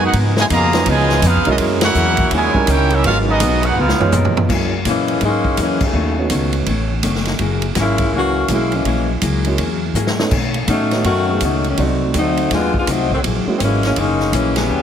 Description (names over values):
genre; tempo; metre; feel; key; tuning
jazz, big band swing; 165 BPM; 4/4; swing 64% on 8ths; F# mixolydian from 4.5 s; A4 = 441 Hz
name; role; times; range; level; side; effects
bright trumpet section; melody; 0.0-4.1 s; B3 to A#5; -18 LUFS; right 1 dB; none
clear trombone section; second line; 0.0-4.1 s; A#2 to G4; -23 LUFS; right 2 dB; none
vintage hollow-body jazz guitar; accompaniment; 0.0-14.8 s; G#2 to A#4; -23 LUFS; left 3 dB; none
warm grand piano; accompaniment; 0.0-13.9 s; G3 to D5; -23 LUFS; right 4 dB; none
upright bass; bass; 0.0-14.8 s; F#1 to B2; -20 LUFS; equal; none
swinging big-band drum kit; drums; 0.1-14.6 s; crash cymbal, hi-hat, kick drum, ride cymbal, snare drum, toms; -21 LUFS; equal; none
warm saxophone section; melody; 4.9-14.8 s; C#3 to F#4; -18 LUFS; left 2 dB; none
room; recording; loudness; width
moderate concert hall reverb, RT60 2.1 s; heavily compressed radio sound, multiband compression; -14 LUFS; side -9 dB against mid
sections
0.0-4.5 A section; 4.5-14.8 B section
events
band accent 1.8, 5.8, 14.5; drum fill 3.8-4.5, 10.0-10.3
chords
0.1 C#9; 1.6 F#9; 2.3 D#7b9; 3.0 G#m7; 3.8 C#13; 4.5 F#9; 5.9 B9; 7.4 F#9; 10.3 B9; 11.8 Cdim7; 13.2 F#9